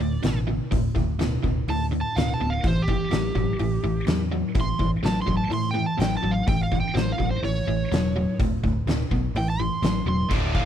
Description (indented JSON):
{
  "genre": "blues rock power trio and southern rock",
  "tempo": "125 BPM",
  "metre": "4/4",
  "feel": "straight",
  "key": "unclear",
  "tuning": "A4 = 441 Hz",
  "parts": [
    { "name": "overdriven slide guitar", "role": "melody", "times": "0.0-10.7 s", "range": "G4 to C6", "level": "-29 LUFS", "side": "right 3 dB", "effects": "none" },
    { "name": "biting overdriven guitar", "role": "riff", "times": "0.0-10.7 s", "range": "D2 to F#3", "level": "-26 LUFS", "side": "equal", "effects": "none" },
    { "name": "vintage muted picked electric bass", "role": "bass", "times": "0.0-10.6 s", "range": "D1 to A2", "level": "-27 LUFS", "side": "equal", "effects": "none" },
    { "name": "oversized low-tuned drum kit", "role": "drums", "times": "0.2-10.7 s", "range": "crash cymbal, hi-hat, kick drum, ride cymbal, snare drum", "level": "-27 LUFS", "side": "equal", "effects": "none" }
  ],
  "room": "little or no reverb",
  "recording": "none",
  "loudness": "-22 LUFS",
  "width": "side -10 dB against mid",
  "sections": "0.0-10.3 A section",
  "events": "none",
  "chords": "0.0 D5; 2.6 A7(no3); 8.4 D5; 9.4 A5"
}